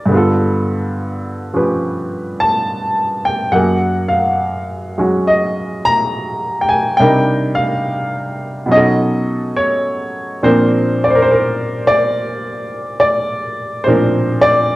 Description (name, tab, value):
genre	jazz ballad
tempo	70 BPM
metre	4/4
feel	swing 67% on 8ths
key	unclear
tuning	A4 = 440 Hz
part	clear baby grand piano	solo	0.0-14.8 s	Gb2 to Bb5	-13 LUFS	equal	cassette tape
room	wet spring reverb, RT60 1.2 s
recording	home recording on cassette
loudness	-13 LUFS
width	side -18 dB against mid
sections	0.0-14.8 A section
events	none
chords	0.1 G9; 3.5 Gbmaj9; 7.0 Cm7; 8.7 B9; 10.4 Bb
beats	| 0.10 0.95 1.81 2.67 | 3.53 4.39 5.25 6.11 | 6.97 7.83 8.69 9.55 | 10.41 11.27 12.12 12.98 | 13.84 14.70